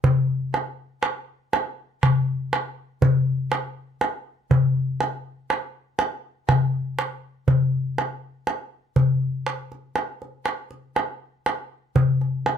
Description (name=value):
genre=greek folk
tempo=121 BPM (eighths)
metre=9/8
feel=straight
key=none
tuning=none
part: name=darbuka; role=percussion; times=0.0-12.6 s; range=none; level=-20 LUFS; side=left 1 dB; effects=none
room=light reverb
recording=close, detailed microphones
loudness=-22 LUFS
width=side -8 dB against mid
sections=0.0-12.6 A section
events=none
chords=none